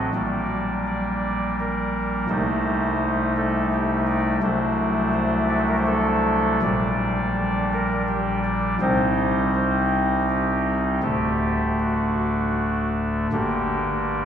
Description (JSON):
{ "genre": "classical, chorale-style piece for pipe organ", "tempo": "82 BPM", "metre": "3/4", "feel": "rubato", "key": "G minor", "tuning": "A4 = 440 Hz", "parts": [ { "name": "chamber organ, soft reed", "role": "solo", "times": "0.0-14.2 s", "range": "D1 to D5", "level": "-20 LUFS", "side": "equal", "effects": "none" } ], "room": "wet cathedral reverb, RT60 4.7 s", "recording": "studio reverb", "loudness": "-20 LUFS", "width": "side -8 dB against mid", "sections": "0.0-13.3 A section", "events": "none", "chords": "0.1 Gm/Bb; 2.3 Am7b5/C; 4.4 D7/C; 6.6 Gm/Bb; 8.8 Cm; 11.0 D; 13.3 Gm", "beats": "| 0.14 0.86 1.58 | 2.29 3.00 3.71 | 4.42 5.14 5.87 | 6.62 7.35 8.08 | 8.81 9.54 10.28 | 11.04 11.80 12.57 | 13.32 14.06" }